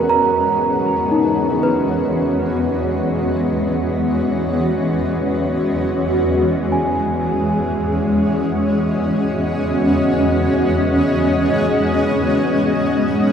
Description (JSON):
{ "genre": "ambient", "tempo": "free time", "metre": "none", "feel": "none", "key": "E lydian", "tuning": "A4 = 440 Hz", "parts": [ { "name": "granular cloud pad", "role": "sustained chords", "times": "0.0-13.3 s", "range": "E2 to D#5", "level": "-16 LUFS", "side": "equal", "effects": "built-in reverb" }, { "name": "celesta", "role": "arpeggios", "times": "0.0-13.3 s", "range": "D#4 to A#5", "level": "-20 LUFS", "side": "right 1 dB", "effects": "tape echo" } ], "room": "wet cathedral reverb, RT60 5.3 s", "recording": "in a vast, echoing space", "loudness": "-15 LUFS", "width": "side -8 dB against mid", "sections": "0.0-13.3 A section", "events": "fade-in on ambient pad 0.0-13.3; fade-out 11.1-13.3", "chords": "0.0 G#m/E; 5.7 E" }